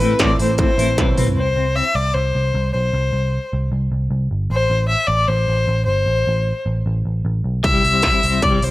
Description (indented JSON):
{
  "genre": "jangly indie pop",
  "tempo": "153 BPM",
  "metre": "4/4",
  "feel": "straight",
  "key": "C major",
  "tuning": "A4 = 442 Hz",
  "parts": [
    { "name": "warm violin", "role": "melody", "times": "0.0-8.7 s", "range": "B4 to E5", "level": "-19 LUFS", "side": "left 2 dB", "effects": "none" },
    { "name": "picked steel-string acoustic guitar", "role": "accompaniment", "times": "0.0-1.4 s", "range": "A2 to B4", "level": "-24 LUFS", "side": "right 5 dB", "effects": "none" },
    { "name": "twelve-string electric guitar", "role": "arpeggios", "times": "0.0-1.9, 7.6-8.7 s", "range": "G3 to B4", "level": "-23 LUFS", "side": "left 4 dB", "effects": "tremolo" },
    { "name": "vintage muted picked electric bass", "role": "bass", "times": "0.0-8.7 s", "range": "G1 to C2", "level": "-19 LUFS", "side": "equal", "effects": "none" },
    { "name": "industrial drum kit", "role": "drums", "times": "0.0-1.4, 7.6-8.7 s", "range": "hi-hat, kick drum, snare drum, toms", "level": "-20 LUFS", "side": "equal", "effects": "distortion" }
  ],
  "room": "light reverb",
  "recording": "none",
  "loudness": "-16 LUFS",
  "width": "side -17 dB against mid",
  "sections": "0.0-1.4 A section; 1.4-8.7 B section",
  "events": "drum fill 1.0-1.4",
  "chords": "0.0 Amadd9; 1.4 C5; 4.5 Am; 7.6 C",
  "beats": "0.20 0.59 0.98 | 1.37 1.76 2.16 2.55 | 2.94 3.33 3.73 4.12 | 4.51 4.90 5.29 5.68 | 6.08 6.47 6.86 7.25 | 7.64 8.04 8.43"
}